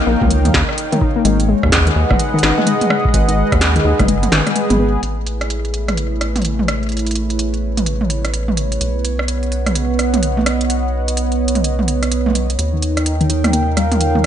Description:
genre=IDM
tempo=127 BPM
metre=4/4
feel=swing 62% on 16ths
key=A lydian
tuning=A4 = 439 Hz
part: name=warm analog pad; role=sustained chords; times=0.0-14.3 s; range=G#3 to G5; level=-20 LUFS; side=right 2 dB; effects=chorus
part: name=warbly dusty pluck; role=arpeggios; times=0.1-4.8, 12.7-14.2 s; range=D#3 to D#4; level=-19 LUFS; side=left 4 dB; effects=chorus, vintage 12-bit sampler grit, ping-pong delay
part: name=rubbery square bass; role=bass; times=0.1-14.3 s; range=F#1 to D#2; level=-18 LUFS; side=equal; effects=none
part: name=electronic kick drum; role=drums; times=0.2-4.1 s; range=none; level=-19 LUFS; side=equal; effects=overdrive, studio reverb
part: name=industrial drum kit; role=drums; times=0.2-14.3 s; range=hi-hat, rim click, snare drum, toms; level=-19 LUFS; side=right 2 dB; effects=low-pass filter on hats, studio reverb, low-pass filter on snare, low-pass filter on toms, ping-pong delay
room=light reverb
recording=nothing above 10.4 kHz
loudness=-14 LUFS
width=side -10 dB against mid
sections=0.0-5.0 A section; 5.0-14.3 B section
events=kick drops out 4.1-5.0; filter sweep on analog synth pad 5.0-14.3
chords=0.0 D#7; 1.2 G#m7; 5.0 Amaj7; 8.8 Badd9; 12.6 D#7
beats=0.30 0.78 | 1.25 1.72 2.19 2.67 | 3.14 3.61 4.08 4.56 | 5.03 5.50 5.97 6.45 | 6.92 7.39 7.86 8.34 | 8.81 9.28 9.75 10.23 | 10.70 11.17 11.64 12.12 | 12.59 13.06 13.53 14.01

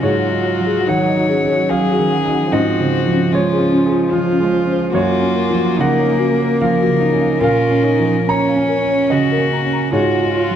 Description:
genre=neoclassical piano and strings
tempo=73 BPM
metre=3/4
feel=rubato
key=unclear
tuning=A4 = 440 Hz
part: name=rich violin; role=melody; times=0.0-10.6 s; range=F4 to Db5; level=-20 LUFS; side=left 4 dB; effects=none
part: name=warm cello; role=second line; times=0.0-10.6 s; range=C4 to Gb4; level=-23 LUFS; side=right 5 dB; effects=none
part: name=warm concert grand piano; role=accompaniment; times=0.0-10.6 s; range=Gb2 to Bb5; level=-18 LUFS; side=right 2 dB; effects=none
part: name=warm viola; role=accompaniment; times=0.0-10.6 s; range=F3 to F4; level=-21 LUFS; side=right 2 dB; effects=none
part: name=folk marimba with soft mallets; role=arpeggios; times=0.0-10.5 s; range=Db4 to Bb5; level=-23 LUFS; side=left 5 dB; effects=slapback echo
room=moderate recital hall reverb, RT60 1.5 s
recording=dark, warm production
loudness=-13 LUFS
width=side -9 dB against mid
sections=0.0-10.6 A section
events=none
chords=0.0 Ab7sus4; 2.5 Dbmaj7/Ab; 4.9 Gbmaj7; 7.4 Bbm; 9.9 Ab7sus4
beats=| 0.03 0.88 1.70 | 2.52 3.33 4.13 | 4.94 5.79 6.61 | 7.42 8.28 9.11 | 9.94

